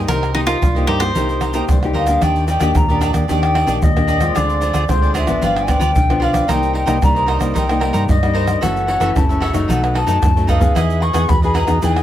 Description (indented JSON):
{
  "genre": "samba and choro",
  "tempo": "112 BPM",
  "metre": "4/4",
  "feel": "straight",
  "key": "unclear",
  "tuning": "A4 = 439 Hz",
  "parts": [
    { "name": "cavaquinho", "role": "accompaniment", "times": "0.0-12.0 s", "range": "D4 to Fb5", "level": "-24 LUFS", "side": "right 4 dB", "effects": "none" },
    { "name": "nylon-string guitar", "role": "accompaniment", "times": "0.0-12.0 s", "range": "Gb2 to Ab4", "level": "-22 LUFS", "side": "left 2 dB", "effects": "none" },
    { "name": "hollow-body short-scale fingered electric bass", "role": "bass", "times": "0.0-12.0 s", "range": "Gb1 to G2", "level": "-20 LUFS", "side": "equal", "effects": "none" },
    { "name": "cavaquinho", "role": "melody", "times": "0.1-1.9 s", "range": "Eb4 to C5", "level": "-21 LUFS", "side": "right 1 dB", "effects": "plate reverb, tape echo" },
    { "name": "egg shaker, surdo, pandeiro and tamborim", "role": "percussion", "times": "0.1-12.0 s", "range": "none", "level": "-19 LUFS", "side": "right 1 dB", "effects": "none" },
    { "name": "baroque flute", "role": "second line", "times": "1.9-12.0 s", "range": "C5 to Db6", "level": "-20 LUFS", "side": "left 2 dB", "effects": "none" }
  ],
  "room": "light reverb",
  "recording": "none",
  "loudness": "-14 LUFS",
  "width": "side -12 dB against mid",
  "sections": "0.0-2.2 A section; 2.2-12.0 B section",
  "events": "flute solo 2.2-12.0; drum fill 10.2-10.8",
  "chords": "0.0 Cm7; 2.2 Ebmaj7; 4.4 Dm7b5; 5.4 G7; 6.5 Cm7; 8.6 Gbm7; 9.7 B7; 10.8 Emaj7",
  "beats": "| 0.08 0.62 1.15 1.69 | 2.22 2.75 3.29 3.82 | 4.36 4.89 5.42 5.96 | 6.49 7.02 7.55 8.09 | 8.62 9.15 9.69 10.22 | 10.76 11.29 11.82"
}